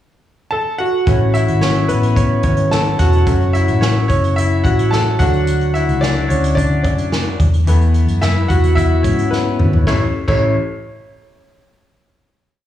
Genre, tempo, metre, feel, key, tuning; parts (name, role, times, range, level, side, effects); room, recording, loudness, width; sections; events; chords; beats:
piano-driven pop; 109 BPM; 4/4; straight; A major; A4 = 436 Hz
bright grand piano; accompaniment; 0.5-10.5 s; A1 to A5; -17 LUFS; left 1 dB; slapback echo
vintage muted fingered electric bass; bass; 1.1-10.5 s; E1 to G#2; -16 LUFS; equal
unplugged drum kit; drums; 1.1-10.4 s; crash cymbal, hi-hat, kick drum, snare drum, toms; -19 LUFS; equal
studio reverb; live gig heard through the venue's PA, club reverb, small room ambience; -13 LUFS; side -12 dB against mid
0.0-1.1 pickup bar; 1.1-9.9 verse; 9.9-12.1 final chord
grand piano solo 1.1-9.9; drum fill 9.3-9.9
0.0 F#m; 1.1 A; 3.3 F#m; 5.2 D; 7.4 Esus4; 9.9 A
0.52 | 1.07 1.62 2.17 2.72 | 3.27 3.82 4.37 4.92 | 5.47 6.02 6.57 7.12 | 7.67 8.22 8.77 9.32 | 9.87 10.41